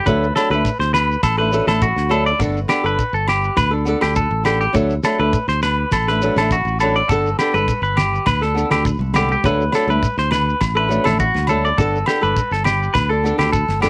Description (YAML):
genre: highlife guitar band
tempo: 102 BPM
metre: 4/4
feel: straight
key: G major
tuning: A4 = 440 Hz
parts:
  - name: clean electric guitar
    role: arpeggios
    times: 0.0-13.9 s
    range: F#4 to D5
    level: -22 LUFS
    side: equal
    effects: cassette tape, tape echo
  - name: flamenco guitar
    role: accompaniment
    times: 0.1-13.9 s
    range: F#3 to A4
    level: -23 LUFS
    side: equal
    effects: cassette tape
  - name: fingered electric bass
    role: bass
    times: 0.1-13.9 s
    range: G1 to D2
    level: -24 LUFS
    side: equal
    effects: none
  - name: damped 70s drum kit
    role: drums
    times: 0.1-13.9 s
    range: kick drum, snare drum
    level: -27 LUFS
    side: equal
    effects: cassette tape
  - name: shekere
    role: percussion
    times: 0.1-13.9 s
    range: none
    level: -28 LUFS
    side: equal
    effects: none
  - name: agogo bells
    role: percussion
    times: 0.4-13.9 s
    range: none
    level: -28 LUFS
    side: equal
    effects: none
  - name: congas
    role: percussion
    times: 7.5-13.9 s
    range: none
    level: -31 LUFS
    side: equal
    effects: none
room: light reverb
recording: home recording on cassette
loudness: -18 LUFS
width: mono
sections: 0.0-13.9 A section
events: none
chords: 0.1 D; 2.4 Gadd9; 4.8 D; 7.1 Gadd9; 9.4 D; 11.8 Gadd9